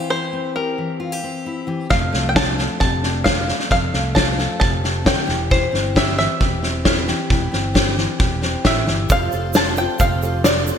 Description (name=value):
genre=indie folk with a building arrangement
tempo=133 BPM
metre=4/4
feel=straight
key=F major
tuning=A4 = 440 Hz
part: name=bluegrass banjo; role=melody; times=0.0-10.8 s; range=Bb4 to A5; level=-22 LUFS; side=equal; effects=none
part: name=fingerpicked steel-string acoustic guitar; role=accompaniment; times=0.0-9.1 s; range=F2 to A4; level=-25 LUFS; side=left 3 dB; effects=none
part: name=mellow fretless electric bass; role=bass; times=1.9-10.7 s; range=E1 to C2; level=-24 LUFS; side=right 1 dB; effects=none
part: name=loose indie drum kit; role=drums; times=1.9-10.6 s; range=kick drum, snare drum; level=-18 LUFS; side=equal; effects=gated reverb
part: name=felt-muted upright piano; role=accompaniment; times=9.1-10.8 s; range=F1 to C5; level=-29 LUFS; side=right 8 dB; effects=none
part: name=picked twelve-string acoustic guitar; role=accompaniment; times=9.1-10.8 s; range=F3 to A4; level=-28 LUFS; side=left 5 dB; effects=ensemble chorus
part: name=egg shaker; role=percussion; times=9.1-10.8 s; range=none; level=-32 LUFS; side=right 19 dB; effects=none
room=moderate lush hall reverb, RT60 1.9 s, small room ambience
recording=bright 1980s-style digital production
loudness=-16 LUFS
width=side -8 dB against mid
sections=0.0-9.1 A section; 9.1-10.8 B section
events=none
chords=0.0 C/E; 1.9 F6; 5.3 C/E; 9.1 Fadd9